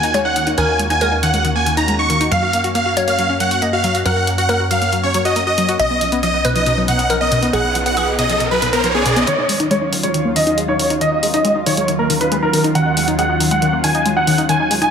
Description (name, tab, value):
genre	uplifting trance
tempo	138 BPM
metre	4/4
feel	straight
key	Eb minor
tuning	A4 = 441 Hz
part	supersaw chords	melody	0.0-14.9 s	Ab4 to Db6	-18 LUFS	right 1 dB	low-pass filter, digital delay
part	glassy wavetable pluck	second line	0.0-9.2 s	Ab4 to F5	-22 LUFS	equal	chorus, digital delay
part	lush unison pad	sustained chords	0.0-14.9 s	Eb2 to Gb4	-23 LUFS	equal	chorus, phaser
part	wide unison pluck	arpeggios	0.0-14.9 s	B2 to Gb4	-21 LUFS	left 3 dB	digital delay
part	tight sequencer bass	bass	0.0-9.3 s	B1 to Gb2	-24 LUFS	right 1 dB	none
part	electronic hi-hat	drums	0.0-14.9 s	none	-24 LUFS	left 1 dB	none
part	riser	sound effects	6.9-9.3 s	none	-23 LUFS	right 2 dB	none
part	warm baby grand piano	second line	9.3-14.9 s	Bb4 to Ab5	-22 LUFS	right 1 dB	low-pass filter, digital delay
room	moderate lush hall reverb, RT60 1.8 s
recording	none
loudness	-14 LUFS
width	side -7 dB against mid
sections	0.0-9.3 A section; 9.3-14.9 B section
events	riser 6.9-9.3; build-up 9.3-14.9; filter sweep on supersaw synth 9.3-14.9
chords	0.0 Ebm7; 2.3 Gb; 5.8 Badd9; 9.3 Ebm7